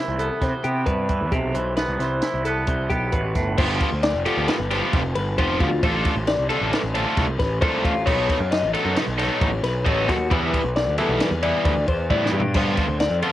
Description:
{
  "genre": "math rock and midwest emo",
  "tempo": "134 BPM",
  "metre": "5/4",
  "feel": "straight",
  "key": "unclear",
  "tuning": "A4 = 440 Hz",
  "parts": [
    { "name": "twangy electric guitar", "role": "accompaniment", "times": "0.0-3.6 s", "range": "A2 to G4", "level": "-26 LUFS", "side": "right 3 dB", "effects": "cassette tape" },
    { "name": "twelve-string electric guitar", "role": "arpeggios", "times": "0.0-13.3 s", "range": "F4 to D#5", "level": "-26 LUFS", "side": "left 4 dB", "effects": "cassette tape, tape echo" },
    { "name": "fuzz picked electric bass", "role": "bass", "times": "0.1-13.2 s", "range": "F1 to C3", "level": "-25 LUFS", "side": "equal", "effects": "overdrive" },
    { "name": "compact cocktail drum kit", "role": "drums", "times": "0.2-13.3 s", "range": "crash cymbal, hi-hat, kick drum, ride cymbal, snare drum, splash cymbal, toms", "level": "-25 LUFS", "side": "equal", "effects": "cassette tape" },
    { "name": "cranked stack guitar", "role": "riff", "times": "3.6-13.3 s", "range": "D3 to A4", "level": "-23 LUFS", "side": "right 1 dB", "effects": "overdrive, cassette tape" }
  ],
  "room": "small room ambience",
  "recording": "home recording on cassette",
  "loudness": "-19 LUFS",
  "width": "side -13 dB against mid",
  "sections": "0.0-3.6 A section; 3.6-13.3 B section",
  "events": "drum fill 12.1-12.6",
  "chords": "0.0 Cmaj7; 3.6 G7sus4; 5.8 Dm7/A; 8.1 B7; 10.3 Em7; 12.6 G7sus4"
}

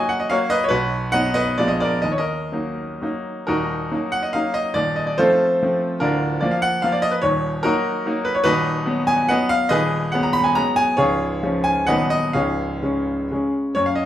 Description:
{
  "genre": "classical, romantic triple-time dance for piano with dotted rhythms",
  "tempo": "118-155 BPM",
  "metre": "3/4",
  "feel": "rubato",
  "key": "Eb minor",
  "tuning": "A4 = 440 Hz",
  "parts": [
    { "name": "bright grand piano", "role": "solo", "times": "0.0-14.1 s", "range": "C#1 to B5", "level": "-18 LUFS", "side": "equal", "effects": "none" }
  ],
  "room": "wet large studio reverb, RT60 1.1 s",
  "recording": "heard from further back in the room",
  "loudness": "-18 LUFS",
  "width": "side -12 dB against mid",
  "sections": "0.0-3.5 A section; 3.5-13.8 B section",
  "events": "none",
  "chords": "0.0 Ebm; 0.7 B; 1.6 Bb7b9; 2.0 Ebm; 4.8 F7/Eb; 6.0 Bb/D; 7.2 Ebm; 8.4 B/D#; 9.7 G#m7/D#; 11.0 C#; 11.9 B/D#; 12.3 C#"
}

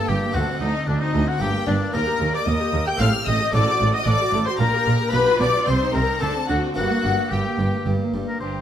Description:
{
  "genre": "classical, baroque-style concerto movement with solo episodes",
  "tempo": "112 BPM",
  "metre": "3/4",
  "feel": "straight",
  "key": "G minor",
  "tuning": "A4 = 439 Hz",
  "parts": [
    { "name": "rich chamber violin section", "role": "melody", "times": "0.0-8.6 s", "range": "D5 to G6", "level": "-29 LUFS", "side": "left 5 dB", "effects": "none" },
    { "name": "warm oboe", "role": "melody", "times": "0.0-8.6 s", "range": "D4 to G5", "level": "-26 LUFS", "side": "left 2 dB", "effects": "none" },
    { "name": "rich studio violin section", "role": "second line", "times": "0.0-8.6 s", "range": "D4 to G5", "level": "-26 LUFS", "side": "left 3 dB", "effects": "none" },
    { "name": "harpsichord", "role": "accompaniment", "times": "0.0-8.6 s", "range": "D2 to G4", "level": "-30 LUFS", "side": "equal", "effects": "none" },
    { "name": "rich chamber viola section", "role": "accompaniment", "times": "0.0-8.6 s", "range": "G3 to Bb4", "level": "-29 LUFS", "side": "right 2 dB", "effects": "none" },
    { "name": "rich chamber cello section", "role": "bass", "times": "0.1-8.6 s", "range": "D2 to D3", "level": "-26 LUFS", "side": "right 2 dB", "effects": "none" },
    { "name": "warm chamber double bass section", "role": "bass", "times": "0.1-8.6 s", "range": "G1 to Eb2", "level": "-25 LUFS", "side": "right 2 dB", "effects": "none" }
  ],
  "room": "moderate recital hall reverb, RT60 1.4 s",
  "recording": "none",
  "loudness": "-18 LUFS",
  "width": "side -10 dB against mid",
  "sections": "0.0-8.4 A section",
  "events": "none",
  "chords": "0.3 D5; 1.4 Gm; 1.9 Eb; 3.0 Am7b5; 3.5 D7b9/A; 4.6 Gm/Bb; 5.1 G7/B; 5.7 Cm; 6.2 D7; 6.8 Gm"
}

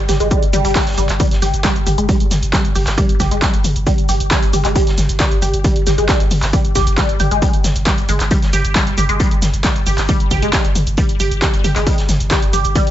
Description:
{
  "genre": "driving peak-time techno",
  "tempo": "135 BPM",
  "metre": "4/4",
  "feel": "straight",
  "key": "unclear",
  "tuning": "A4 = 440 Hz",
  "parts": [
    { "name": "saturated sub bass", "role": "bass", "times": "0.0-12.9 s", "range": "G1", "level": "-20 LUFS", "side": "equal", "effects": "tube saturation, sidechain pumping, low-pass filter" },
    { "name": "resonant blip pluck", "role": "riff", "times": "0.1-12.8 s", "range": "G3 to G4", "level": "-20 LUFS", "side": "equal", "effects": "phaser, overdrive, vintage 12-bit sampler grit, sidechain pumping, ping-pong delay" },
    { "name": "punchy analog drum machine", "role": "drums", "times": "0.1-12.9 s", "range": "handclaps, hi-hat, shaker, toms", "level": "-20 LUFS", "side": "equal", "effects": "sidechain pumping on hats, sidechain pumping on perc, sidechain pumping on toms" },
    { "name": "raw garage drum kit", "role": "drums", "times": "0.1-12.9 s", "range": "hi-hat, snare drum", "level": "-30 LUFS", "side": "equal", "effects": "none" },
    { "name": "electronic kick drum", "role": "drums", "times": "0.3-12.8 s", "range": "none", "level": "-16 LUFS", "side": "equal", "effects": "overdrive" }
  ],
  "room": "little or no reverb",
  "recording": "nothing above 7.8 kHz",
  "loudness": "-13 LUFS",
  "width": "side -12 dB against mid",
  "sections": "0.0-12.9 A section",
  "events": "none",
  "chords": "none"
}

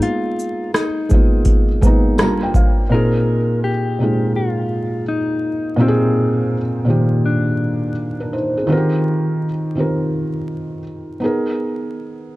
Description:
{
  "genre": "lo-fi hip hop",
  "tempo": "83 BPM",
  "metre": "4/4",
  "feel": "swing 66% on 16ths",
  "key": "unclear",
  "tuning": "A4 = 443 Hz",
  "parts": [
    { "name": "mellow electric guitar", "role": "melody", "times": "0.0-8.3 s", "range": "C4 to Bb4", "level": "-24 LUFS", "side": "left 2 dB", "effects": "low-pass filter" },
    { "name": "felt-muted upright piano", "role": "accompaniment", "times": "0.0-12.4 s", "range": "Bb2 to Bb5", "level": "-18 LUFS", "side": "equal", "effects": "cassette tape, low-pass filter" },
    { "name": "booming analog drum machine", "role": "drums", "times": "0.0-2.8 s", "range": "hi-hat, kick drum, rim click, shaker", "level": "-15 LUFS", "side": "equal", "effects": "overdrive" },
    { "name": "tambourine", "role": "percussion", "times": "0.7-2.4 s", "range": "none", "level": "-40 LUFS", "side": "left 7 dB", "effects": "none" }
  ],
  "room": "moderate plate reverb, RT60 2.6 s",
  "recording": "dark, warm production, vinyl crackle",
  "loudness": "-15 LUFS",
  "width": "side -18 dB against mid",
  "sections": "0.0-2.9 A section; 2.9-12.4 B section",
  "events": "none",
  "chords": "0.0 Abmadd9; 2.2 Gm7; 2.9 Bb9sus4; 8.7 Eb69; 11.2 Abmadd9"
}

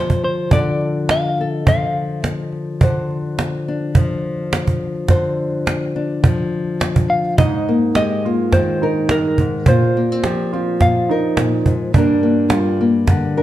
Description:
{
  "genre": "acoustic folk duo or small band",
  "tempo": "105 BPM",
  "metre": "4/4",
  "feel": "straight",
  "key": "unclear",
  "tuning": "A4 = 441 Hz",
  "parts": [
    { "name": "semi-hollow electric guitar", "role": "melody", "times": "0.0-2.5, 7.1-11.6 s", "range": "Bb4 to F5", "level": "-21 LUFS", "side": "equal", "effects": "tremolo" },
    { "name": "nylon-string guitar", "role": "accompaniment", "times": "0.0-13.4 s", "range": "G2 to D5", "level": "-19 LUFS", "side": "left 3 dB", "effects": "none" },
    { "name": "cajon", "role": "percussion", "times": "0.1-13.2 s", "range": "none", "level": "-16 LUFS", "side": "right 1 dB", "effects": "none" },
    { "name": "felt-muted upright piano", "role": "arpeggios", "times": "7.4-13.4 s", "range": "D4 to G4", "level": "-20 LUFS", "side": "right 5 dB", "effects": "none" }
  ],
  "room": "wet large studio reverb, RT60 1.1 s",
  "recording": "dark, warm production",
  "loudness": "-15 LUFS",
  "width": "side -13 dB against mid",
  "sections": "0.0-7.4 A section; 7.4-13.4 B section",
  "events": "none",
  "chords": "0.0 Dm; 2.8 Dm7; 7.4 Absus2; 9.7 Bbsus2; 11.9 Gm"
}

